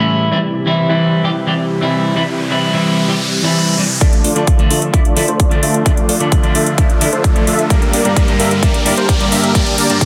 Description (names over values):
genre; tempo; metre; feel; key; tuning
EDM, festival progressive house; 130 BPM; 4/4; straight; D minor; A4 = 440 Hz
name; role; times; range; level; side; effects
semi-hollow electric guitar; accompaniment; 0.0-10.1 s; G2 to G4; -19 LUFS; equal; sidechain pumping, digital delay
lush unison pad; sustained chords; 0.0-10.1 s; C3 to G4; -24 LUFS; equal; chorus, sidechain pumping
riser; sound effects; 1.5-10.1 s; none; -24 LUFS; equal; none
supersaw chords; riff; 4.0-10.1 s; A3 to E5; -19 LUFS; equal; sidechain pumping, low-pass filter, digital delay
saturated sub bass; bass; 4.0-10.1 s; none; barely audible; none; none
electronic hi-hat; drums; 4.0-10.1 s; none; -22 LUFS; equal; none
electronic kick drum; drums; 4.0-10.1 s; none; -15 LUFS; equal; none
room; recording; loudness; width
moderate digital room reverb, RT60 1.2 s; dense, heavily limited modern master; -14 LUFS; mono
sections
0.0-4.0 A section; 4.0-10.1 B section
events
filter sweep on analog synth pad 0.0-4.0; riser 1.5-4.0, 4.0-10.1; build-up 4.0-10.1; filter sweep on supersaw synth 4.0-10.1; filter sweep 4.0-10.1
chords
0.3 C; 4.0 Dm; 7.7 Gm